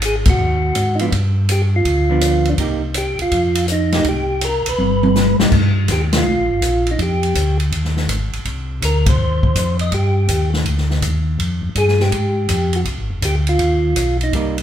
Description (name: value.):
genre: soul jazz organ trio.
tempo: 164 BPM.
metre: 4/4.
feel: swing 66% on 8ths.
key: C harmonic minor.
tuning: A4 = 440 Hz.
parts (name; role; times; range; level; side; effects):
mellow tonewheel organ; bass; 0.0-14.6 s; F1 to Ab2; -18 LUFS; equal; slow rotary speaker.
open jazz drum kit; drums; 0.0-14.6 s; crash cymbal, hi-hat, kick drum, ride cymbal, snare drum, toms; -20 LUFS; left 1 dB; none.
percussive tonewheel organ; melody; 0.1-14.3 s; D4 to Eb5; -19 LUFS; right 1 dB; slow rotary speaker.
vintage hollow-body jazz guitar; accompaniment; 1.0-5.5, 14.3-14.6 s; F3 to G4; -23 LUFS; right 4 dB; none.
room: wet large studio reverb, RT60 1.0 s.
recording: band playing live in one room.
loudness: -15 LUFS.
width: side -10 dB against mid.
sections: 0.0-5.5 A section; 5.5-14.6 A section.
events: band accent 0.2, 6.1, 9.0; drum fill 4.8-5.5.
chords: 0.0 Ab5; 1.1 G7; 2.6 Cm7; 3.3 Fsus2; 4.1 C5; 4.8 G; 5.5 Cm7; 7.0 Fm9; 8.5 Cm; 11.4 Fm9.